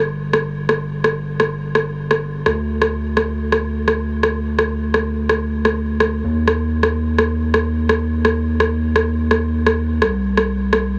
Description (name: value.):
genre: melodic techno.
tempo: 127 BPM.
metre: 4/4.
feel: straight.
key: unclear.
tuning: A4 = 440 Hz.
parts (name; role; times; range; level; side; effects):
gritty driven synth bass; bass; 0.0-11.0 s; G1 to Eb2; -22 LUFS; equal; none.
electronic rim click; drums; 0.3-10.8 s; none; -21 LUFS; equal; none.
room: light reverb.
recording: heavily compressed radio sound, multiband compression.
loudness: -19 LUFS.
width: mono.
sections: 0.0-11.0 A section.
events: none.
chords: none.